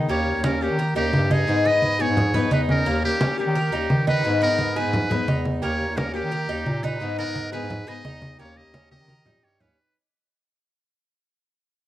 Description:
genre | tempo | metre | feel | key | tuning
latin, Cuban son and guajira | 173 BPM | 4/4 | straight | G# harmonic minor | A4 = 441 Hz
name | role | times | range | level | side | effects
picked acoustic archtop guitar | accompaniment | 0.0-9.8 s | D#3 to G#4 | -27 LUFS | left 5 dB | cassette tape
Cuban tres | arpeggios | 0.0-9.8 s | A#3 to B4 | -30 LUFS | right 6 dB | cassette tape
mellow bass clarinet | bass | 0.0-9.8 s | D#2 to D#3 | -26 LUFS | equal | none
trumpet with metal mute | melody | 0.1-10.0 s | G4 to D#5 | -27 LUFS | equal | cassette tape
flamenco guitar | second line | 0.1-9.9 s | A#3 to G#4 | -34 LUFS | right 6 dB | cassette tape
congas | percussion | 0.1-9.7 s | none | -25 LUFS | equal | none
room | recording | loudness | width
light reverb, small room ambience | home recording on cassette | -20 LUFS | side -14 dB against mid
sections
0.0-4.2 A section; 4.2-9.8 B section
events
fade-out 4.2-9.8; drum fill 8.9-9.8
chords
0.1 D#7; 1.5 G#m; 2.9 D#7; 4.2 G#m; 5.6 D#7; 7.0 G#m; 8.4 D#7

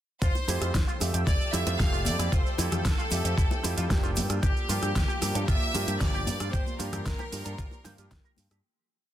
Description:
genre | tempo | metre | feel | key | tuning
nu-disco, nu disco | 114 BPM | 4/4 | straight | F major | A4 = 440 Hz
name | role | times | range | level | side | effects
bright studio violin section | melody | 0.2-8.3 s | G4 to F5 | -34 LUFS | equal | none
lush unison pad | sustained chords | 0.9-8.6 s | Bb3 to E6 | -41 LUFS | equal | chorus, sidechain pumping
electric guitar with an envelope filter | riff | 0.2-8.6 s | E4 to G5 | -40 LUFS | equal | wide subtle chorus
picked electric bass with an envelope filter | bass | 0.2-8.6 s | F1 to G2 | -30 LUFS | equal | none
electronic kick drum | drums | 0.2-8.2 s | none | -27 LUFS | equal | none
pop drum kit | drums | 0.2-8.6 s | hi-hat, rim click, shaker, snare drum | -34 LUFS | right 1 dB | overdrive
cabasa, bongos and congas | percussion | 0.2-8.6 s | none | -39 LUFS | left 5 dB | none
clear grand piano | accompaniment | 0.5-8.1 s | F3 to E5 | -36 LUFS | right 3 dB | none
room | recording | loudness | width
little or no reverb | dense, heavily limited modern master | -25 LUFS | side -12 dB against mid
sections
0.2-8.6 drop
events
drop 0.2-8.6; fade-out 5.8-8.6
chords
0.2 Fmaj9; 4.2 Gm7

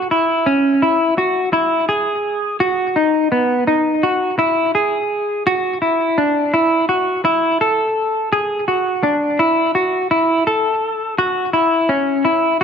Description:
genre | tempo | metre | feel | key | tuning
dream pop | 84 BPM | 4/4 | straight | A major | A4 = 439 Hz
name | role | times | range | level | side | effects
semi-hollow electric guitar | solo | 0.0-12.6 s | B3 to A4 | -15 LUFS | equal | wide subtle chorus, digital delay
room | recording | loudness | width
wet recital hall reverb, RT60 1.6 s, digital ambience | dark, warm production | -15 LUFS | side -7 dB against mid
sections
0.0-12.6 A section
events
none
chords
none

